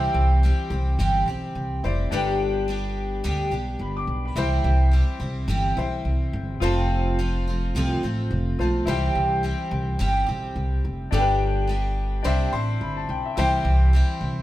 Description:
acoustic pop; 107 BPM; 4/4; swing 55% on 16ths; C major; A4 = 440 Hz
clear concert grand piano; accompaniment; 0.0-14.4 s; D4 to D6; -30 LUFS; left 4 dB
picked twelve-string acoustic guitar; accompaniment; 0.0-14.4 s; F2 to G4; -26 LUFS; right 1 dB
upright bass; bass; 0.0-14.4 s; F1 to D2; -23 LUFS; equal
light reverb; band playing live in one room; -21 LUFS; side -15 dB against mid
0.0-13.4 A section; 13.4-14.4 A section
0.0 C; 2.1 G; 4.4 C; 6.6 F; 8.9 C; 11.1 G; 12.2 Cadd9; 13.4 C
0.43 0.99 1.55 | 2.12 2.68 3.25 3.81 | 4.37 4.93 5.50 6.06 | 6.62 7.18 7.75 8.31 | 8.87 9.44 10.00 10.56 | 11.12 11.68 12.24 12.81 | 13.37 13.93

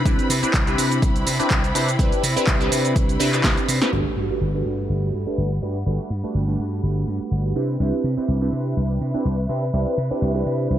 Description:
filtered disco house; 124 BPM; 4/4; swing 54% on 16ths; G major; A4 = 440 Hz
funky polysynth comp; accompaniment; 0.0-10.8 s; A3 to B4; -24 LUFS; right 1 dB; chorus, phaser, sidechain pumping, low-pass filter
clear symphonic string section; sustained chords; 0.0-10.8 s; G3 to B5; -30 LUFS; left 1 dB; sidechain pumping, low-pass filter
slap bass; bass; 0.0-10.8 s; G1 to C3; -23 LUFS; equal; tube saturation, sidechain pumping, low-pass filter
electronic kick drum; drums; 0.1-3.5 s; -21 LUFS; equal
punchy analog drum machine; drums; 0.1-3.9 s; handclaps, hi-hat, shaker, snare drum; -24 LUFS; right 1 dB; sidechain pumping on hats, low-pass filter on hats, low-pass filter on snare, sidechain pumping on perc, low-pass filter on perc, low-pass filter on room
impact; sound effects; 3.9-5.9 s; -33 LUFS; equal
little or no reverb; -19 LUFS; side -11 dB against mid
0.0-3.9 A section; 3.9-10.8 B section
drum fill 3.4-3.9; band accent 3.8; impact 3.9-5.9; filter sweep 3.9-10.8
0.0 Cmaj7; 3.9 Gmaj7; 7.6 Cmaj7
| 0.06 0.54 1.02 1.51 | 1.99 2.48 2.96 3.44 | 3.93 4.41 4.90 5.38 | 5.86 6.35 6.83 7.32 | 7.80 8.28 8.77 9.25 | 9.73 10.22 10.70

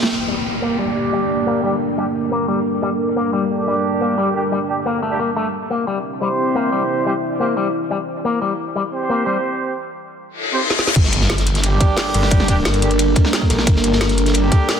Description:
dark technical drum and bass; 177 BPM; 4/4; straight; G dorian; A4 = 439 Hz
dark analog pad; sustained chords; 0.0-14.8 s; G3 to E5; -25 LUFS; left 2 dB; chorus, phaser, sidechain pumping
crunchy breakbeat drum kit; drums; 0.0-0.1, 11.0-14.8 s; hi-hat, ride cymbal, snare drum; -27 LUFS; equal; high-pass filter on cymbals, high-pass filter on hats, high-pass filter on snare, high-pass filter on room
drum and bass drum kit; drums; 0.0-0.1, 10.7-14.8 s; crash cymbal, hi-hat, snare drum; -22 LUFS; equal
deep dark ambient pad; texture; 0.0-14.8 s; Bb3 to G5; -23 LUFS; right 1 dB; chorus, built-in reverb, sidechain pumping
downlifter, reverse cymbal and impact; sound effects; 0.1-2.8, 10.4-12.3 s; -24 LUFS; left 2 dB
electric guitar with an envelope filter; arpeggios; 0.3-9.4 s; G3 to Bb3; -22 LUFS; left 4 dB; sidechain pumping, low-pass filter, dub echo
warm brass ensemble; stabs; 0.8-14.8 s; G3 to C5; -23 LUFS; right 3 dB; low-pass filter, dub echo
snarling distorted saw bass; bass; 11.0-14.5 s; G1 to Bb1; -19 LUFS; equal; distortion, overdrive
electronic kick drum; drums; 11.0-14.6 s; -15 LUFS; equal
light reverb, small room ambience; dense, heavily limited modern master; -16 LUFS; side -7 dB against mid
0.1-11.0 A section; 11.0-14.8 B section
filter sweep on clean electric guitar 0.1-11.0; reverse cymbal 10.4-11.0; drum fill 10.7; drop 11.0-14.8; impact 11.0-12.3
0.1 Gm; 5.5 C; 11.0 Gm
| 0.11 0.45 0.79 1.13 | 1.47 1.80 2.14 2.48 | 2.82 3.16 3.50 3.84 | 4.18 4.52 4.86 5.20 | 5.53 5.87 6.21 6.55 | 6.89 7.23 7.57 7.91 | 8.25 8.59 8.92 9.26 | 9.60 9.94 10.28 10.62 | 10.96 11.30 11.64 11.97 | 12.31 12.65 12.99 13.33 | 13.67 14.01 14.35 14.69

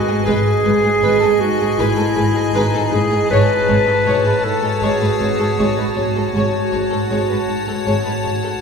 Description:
cinematic, suspense film score; 79 BPM; 4/4; straight; A4 = 440 Hz
dark chamber violin section; melody; 0.0-8.6 s; G#5 to A5; -26 LUFS; left 3 dB
warm clarinet; second line; 0.0-8.6 s; D#4 to B4; -18 LUFS; equal
icy glass pad; sustained chords; 0.0-8.6 s; F#4 to A5; -26 LUFS; left 1 dB; chorus, built-in reverb
rich symphonic cello section; riff; 0.0-8.5 s; G#2 to G#3; -26 LUFS; equal
warm symphonic violin section; second line; 0.1-8.5 s; G#4 to C#5; -24 LUFS; left 4 dB
rich studio viola section; accompaniment; 0.1-8.5 s; G#3; -24 LUFS; right 3 dB
warm symphonic cello section; bass; 0.1-8.5 s; G#2; -24 LUFS; right 1 dB
dark symphonic double bass section; bass; 0.3-8.3 s; G#1; -25 LUFS; right 1 dB
wet cathedral reverb, RT60 5.6 s; recorded in a church or concert hall; -14 LUFS; side -6 dB against mid
0.0-8.6 A section
0.0 G#m; 3.3 F#madd9/G#
| 0.27 1.03 1.79 2.54 | 3.31 4.06 4.82 5.58 | 6.34 7.10 7.86

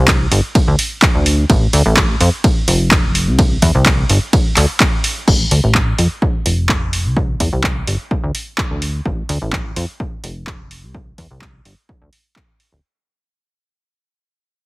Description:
piano house; 127 BPM; 4/4; straight; A4 = 440 Hz
plucky analog bass; bass; 0.0-12.8 s; D1 to F2; -16 LUFS; equal; sidechain pumping
electronic kick drum; drums; 0.1-12.5 s; -16 LUFS; equal
punchy analog drum machine; drums; 0.1-12.7 s; crash cymbal, handclaps, hi-hat, ride cymbal; -18 LUFS; equal
little or no reverb; heavily compressed radio sound; -13 LUFS; side -23 dB against mid
0.0-5.3 A section; 5.3-12.8 B section
drop 0.0-5.3; fade-out 5.3-12.8
0.08 0.55 1.02 | 1.50 1.97 2.44 2.91 | 3.39 3.86 4.33 4.80 | 5.28 5.75 6.22 6.69 | 7.17 7.64 8.11 8.58 | 9.05 9.53 10.00 10.47 | 10.95 11.42 11.89 12.36

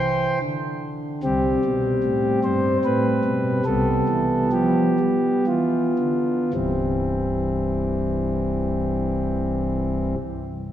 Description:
classical, chorale-style piece for pipe organ; 55-75 BPM; 3/4; rubato; C major; A4 = 440 Hz
chamber organ, principal; solo; 0.0-10.2 s; C1 to C6; -20 LUFS; equal
wet church reverb, RT60 2.5 s; -20 LUFS; side -11 dB against mid
0.0-1.2 A section; 1.2-6.5 B section; 6.5-9.7 C section
slowing down 0.0-6.5
0.0 C; 1.2 C5; 3.7 G7/C; 6.5 C
0.41 | 1.23 2.02 2.83 | 3.65 4.52 5.48 | 6.54 7.62 8.68

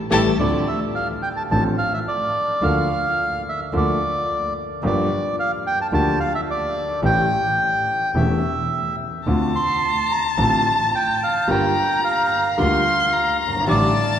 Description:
tango; 109 BPM; 4/4; rubato; D minor; A4 = 440 Hz
warm violin; second line; 0.1-0.3, 9.3-14.2 s; A5 to C6; -24 LUFS; left 4 dB
warm grand piano; accompaniment; 0.1-13.9 s; E1 to A4; -23 LUFS; left 1 dB
rich double bass; bass; 0.1-13.9 s; E1 to D2; -27 LUFS; equal
bandoneon; melody; 0.4-14.2 s; D5 to C6; -21 LUFS; right 1 dB
wet church reverb, RT60 3.6 s; recorded in a church or concert hall; -18 LUFS; side -9 dB against mid
0.4-14.2 A section
band accent 0.0-0.4
0.4 Dm7; 2.6 Bbmaj7/D; 4.8 Gm7; 7.0 A7; 9.3 Dm7; 11.5 Gm7; 13.7 A7sus4
| 0.39 0.95 1.51 2.07 | 2.62 3.18 3.73 4.28 | 4.83 5.38 5.93 6.48 | 7.03 7.59 8.14 8.70 | 9.27 9.82 10.38 10.93 | 11.48 12.04 12.59 13.13 | 13.68

